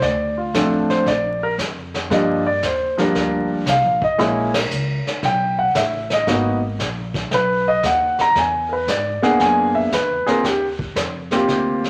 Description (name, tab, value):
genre	jazz piano trio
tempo	115 BPM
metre	4/4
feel	swing 68% on 8ths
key	unclear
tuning	A4 = 441 Hz
part	warm concert grand piano	melody	0.0-11.9 s	F3 to Bb5	-20 LUFS	equal	none
part	upright bass	bass	0.0-11.9 s	G1 to G#2	-30 LUFS	equal	none
part	vintage brush drum kit	drums	0.0-11.9 s	brushed snare drum, hi-hat, kick drum, ride cymbal, snare drum	-28 LUFS	equal	none
room	moderate studio reverb, RT60 0.9 s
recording	vinyl crackle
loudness	-19 LUFS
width	mono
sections	0.0-2.1 A section; 2.1-11.9 B section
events	band accent 4.4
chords	0.0 Bbmaj9 (rootless); 1.1 Bb5; 2.1 Ebmaj7; 4.2 Bbm7b5; 5.2 B7(#5, no3); 6.3 Abm7; 8.4 E7#11; 10.4 Eb69